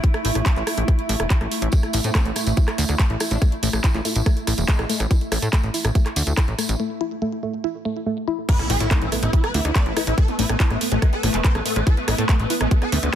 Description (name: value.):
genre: psychedelic trance.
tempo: 142 BPM.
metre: 4/4.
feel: straight.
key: unclear.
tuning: A4 = 440 Hz.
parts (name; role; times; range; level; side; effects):
pulsing gated texture; sustained chords; 0.0-13.2 s; A3 to B4; -30 LUFS; right 1 dB; chorus, built-in reverb, sidechain pumping.
drum and bass drum kit; drums; 0.0-13.1 s; crash cymbal, handclaps, hi-hat, rim click; -26 LUFS; right 1 dB; none.
electronic kick drum; drums; 0.0-12.8 s; none; -18 LUFS; equal; none.
airy breathy pad; texture; 0.0-13.2 s; A3 to E5; -33 LUFS; right 2 dB; chorus, sidechain pumping.
plucky analog bass; bass; 0.2-13.1 s; E1 to A2; -22 LUFS; equal; none.
woody wave-folded pluck; riff; 1.7-13.0 s; A3 to E4; -28 LUFS; moving between left 8 dB and right 6 dB; chorus, auto-pan, sidechain pumping, digital delay.
tambourine; percussion; 1.7-6.8 s; none; -31 LUFS; right 2 dB; none.
formant-sweep wobble bass; second line; 2.0-5.0 s; G#3 to E4; -36 LUFS; left 3 dB; chorus, sidechain pumping, high-pass filter, ping-pong delay.
swarming rave lead; melody; 8.5-13.1 s; A3 to D5; -26 LUFS; left 1 dB; chorus, phaser, sidechain pumping, digital delay.
impact; sound effects; 8.5-10.2 s; none; -30 LUFS; equal; none.
room: digital ambience.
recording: dense, heavily limited modern master.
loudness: -18 LUFS.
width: side -10 dB against mid.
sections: 0.0-8.5 A section; 8.5-13.2 B section.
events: break 6.8-8.5; drop 8.5-13.2; impact 8.5-10.2.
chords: 0.0 A5.